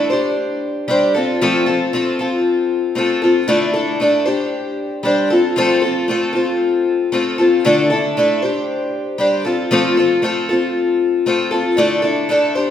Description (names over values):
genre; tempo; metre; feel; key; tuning
rock; 116 BPM; 4/4; straight; unclear; A4 = 440 Hz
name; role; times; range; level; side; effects
picked twelve-string acoustic guitar; solo; 0.0-12.7 s; D3 to C5; -14 LUFS; left 2 dB; none
room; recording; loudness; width
wet scoring stage reverb, RT60 1.7 s; recorded in a church or concert hall; -14 LUFS; side -9 dB against mid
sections
0.0-12.7 A section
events
none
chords
0.1 Gsus4; 1.1 F; 3.5 Dsus2; 4.3 Gsus4; 5.3 F; 7.6 Dsus2; 8.4 Gsus4; 9.4 F; 11.8 Dsus2